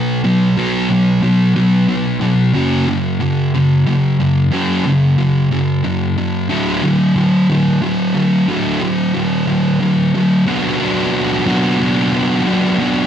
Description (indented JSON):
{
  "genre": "rock",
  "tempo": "61 BPM (dotted quarters)",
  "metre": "6/8",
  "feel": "straight",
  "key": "B minor",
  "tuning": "A4 = 440 Hz",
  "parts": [
    { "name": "thick fuzz guitar", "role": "solo", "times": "0.0-13.1 s", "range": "F#2 to F#4", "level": "-13 LUFS", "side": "equal", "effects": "distortion" }
  ],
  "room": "light reverb",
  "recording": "dark, warm production",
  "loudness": "-13 LUFS",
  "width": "side -9 dB against mid",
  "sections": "0.0-10.5 A section; 10.5-13.1 B section",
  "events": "build-up 0.0-10.5",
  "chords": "0.0 B5; 2.6 F#5; 6.5 D; 10.5 Bm",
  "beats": "| 0.57 1.56 | 2.55 3.54 | 4.53 5.52 | 6.51 7.51 | 8.50 9.49 | 10.48 11.47 | 12.46"
}